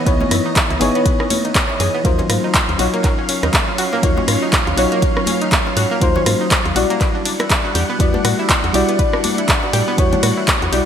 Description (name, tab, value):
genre	deep house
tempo	121 BPM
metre	4/4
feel	swing 58% on 16ths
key	unclear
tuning	A4 = 440 Hz
part	soft string machine	sustained chords	0.0-10.9 s	E3 to F#5	-25 LUFS	equal	ensemble chorus, sidechain pumping
part	analog pluck	arpeggios	0.0-10.8 s	A#3 to B4	-24 LUFS	left 1 dB	chorus, sidechain pumping, ping-pong delay
part	mellow FM electric piano	stabs	0.0-10.9 s	F#3 to D5	-20 LUFS	left 1 dB	chorus, sidechain pumping, ping-pong delay
part	woody FM bass	bass	0.1-10.8 s	G#1 to A2	-21 LUFS	equal	sidechain pumping
part	electronic kick drum	drums	0.1-10.6 s	none	-19 LUFS	equal	none
part	punchy analog drum machine	drums	0.1-10.8 s	handclaps, hi-hat, ride cymbal, rim click	-19 LUFS	equal	gated reverb
part	congas and bongos	percussion	0.2-10.3 s	none	-28 LUFS	left 3 dB	none
room	moderate lush hall reverb, RT60 1.8 s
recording	bright 1980s-style digital production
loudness	-14 LUFS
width	side -8 dB against mid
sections	0.0-10.9 A section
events	none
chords	0.0 C#m9; 2.0 D#m9; 7.0 Em9